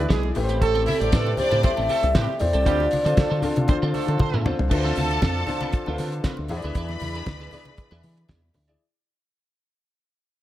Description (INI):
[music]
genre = disco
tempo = 117 BPM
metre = 4/4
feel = straight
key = D dorian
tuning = A4 = 444 Hz
[part]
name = dark concert grand piano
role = accompaniment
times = 0.0-8.8 s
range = D3 to D5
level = -30 LUFS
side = left 3 dB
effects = none
[part]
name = mellow French horn section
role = sustained chords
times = 0.0-8.8 s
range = C3 to G4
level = -35 LUFS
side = left 2 dB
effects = none
[part]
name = warm horn section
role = stabs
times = 0.0-8.5 s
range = F3 to D5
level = -32 LUFS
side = right 8 dB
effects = none
[part]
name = fingered electric bass with an envelope filter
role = bass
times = 0.0-8.8 s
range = A1 to E3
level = -25 LUFS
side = equal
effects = none
[part]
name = clean electric guitar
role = accompaniment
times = 0.1-8.8 s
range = B3 to D5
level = -34 LUFS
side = right 4 dB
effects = ensemble chorus
[part]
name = damped 70s drum kit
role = drums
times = 0.1-8.8 s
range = crash cymbal, hi-hat, kick drum, snare drum, toms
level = -25 LUFS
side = equal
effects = gated reverb
[part]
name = congas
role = percussion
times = 0.1-8.7 s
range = none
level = -33 LUFS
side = left 2 dB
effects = none
[part]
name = mellow hollow alto flute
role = melody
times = 0.6-4.2 s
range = A4 to E5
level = -24 LUFS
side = equal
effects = none
[part]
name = clear symphonic string section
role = second line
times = 0.9-8.5 s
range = D4 to B5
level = -31 LUFS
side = left 1 dB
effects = none
[sound]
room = light reverb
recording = none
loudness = -20 LUFS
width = side -14 dB against mid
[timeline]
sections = 0.0-4.7 A section; 4.7-8.8 B section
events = drum fill 4.2-4.7; fade-out 4.7-8.8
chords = 0.4 Am7; 2.7 Dm7; 6.5 E7